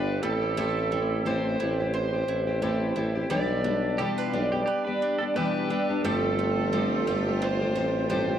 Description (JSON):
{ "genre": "acoustic pop", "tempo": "88 BPM", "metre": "4/4", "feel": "swing 55% on 16ths", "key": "unclear", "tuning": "A4 = 443 Hz", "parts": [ { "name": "overdriven slide guitar", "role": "melody", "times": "0.0-8.4 s", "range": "A4 to D5", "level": "-30 LUFS", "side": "right 2 dB", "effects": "none" }, { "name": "fingerpicked twelve-string acoustic guitar", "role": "accompaniment", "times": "0.0-8.4 s", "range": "G2 to G4", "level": "-28 LUFS", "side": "left 1 dB", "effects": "none" }, { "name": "bowl-back mandolin", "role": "arpeggios", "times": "0.0-8.4 s", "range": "G3 to G5", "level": "-37 LUFS", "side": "right 6 dB", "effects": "none" }, { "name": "clear tuba", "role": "bass", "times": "0.0-8.4 s", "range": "G1 to B1", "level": "-29 LUFS", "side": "equal", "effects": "none" }, { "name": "pedal steel guitar", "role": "second line", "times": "4.0-6.0 s", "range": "F4 to B4", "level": "-34 LUFS", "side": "right 3 dB", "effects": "none" }, { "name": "bright studio string section", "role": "sustained chords", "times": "6.0-8.4 s", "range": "G3 to F4", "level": "-37 LUFS", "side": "right 1 dB", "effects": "none" } ], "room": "small room ambience", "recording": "dry, close 1970s-style studio recording", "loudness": "-24 LUFS", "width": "side -10 dB against mid", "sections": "0.0-6.0 A section; 6.0-8.4 B section", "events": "none", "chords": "0.2 Am7; 3.3 Em7/B; 6.0 Fadd9/G" }